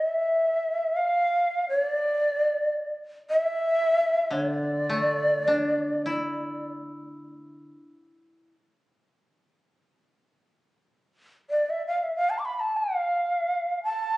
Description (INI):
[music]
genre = japanese traditional, Japanese chamber music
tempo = free time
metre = none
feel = none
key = D minor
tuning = A4 = 440 Hz
[part]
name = breathy shakuhachi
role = melody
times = 0.0-6.7, 11.5-14.2 s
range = D5 to D6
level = -24 LUFS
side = equal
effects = none
[part]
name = koto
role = accompaniment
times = 4.3-8.5 s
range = D3 to E4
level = -30 LUFS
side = left 1 dB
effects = none
[sound]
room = moderate recital hall reverb, RT60 1.5 s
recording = recorded on a phone in the room, studio reverb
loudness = -23 LUFS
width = side -19 dB against mid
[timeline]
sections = 0.0-9.7 A section; 9.7-14.2 A section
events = none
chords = none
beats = free time